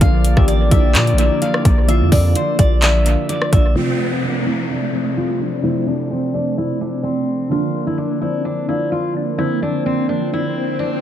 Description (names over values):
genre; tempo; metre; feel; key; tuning
hip hop, trap; 128 BPM; 4/4; half-time; unclear; A4 = 439 Hz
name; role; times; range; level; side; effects
picked steel-string acoustic guitar; melody; 0.0-11.0 s; C4 to F5; -22 LUFS; left 1 dB; low-pass filter, dub echo
soft electric-piano-like synth keys; accompaniment; 0.0-11.0 s; C3 to G4; -20 LUFS; right 1 dB; chorus, phaser, low-pass filter, dub echo
warm analog pad; sustained chords; 0.0-3.7 s; F3 to D5; -27 LUFS; left 7 dB; chorus
hard-hitting 808-style bass; bass; 0.0-3.8 s; A1 to Bb2; -15 LUFS; equal; none
trap drum kit; drums; 0.0-3.6 s; handclaps, hi-hat, kick drum, rim click; -16 LUFS; equal; none
downlifter and swell; sound effects; 3.8-11.0 s; none; -27 LUFS; left 1 dB; none
room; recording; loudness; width
light reverb; echo-heavy mix; -15 LUFS; side -10 dB against mid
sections
0.0-3.8 A section; 3.8-11.0 B section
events
filter sweep 3.8-11.0; swell 9.8-11.0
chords
0.0 Bb; 3.8 F; 7.5 Bb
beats
| 0.01 0.48 0.95 1.42 | 1.89 2.35 2.82 3.29 | 3.76 4.23 4.70 5.17 | 5.64 6.11 6.57 7.04 | 7.51 7.98 8.45 8.92 | 9.39 9.86 10.32 10.79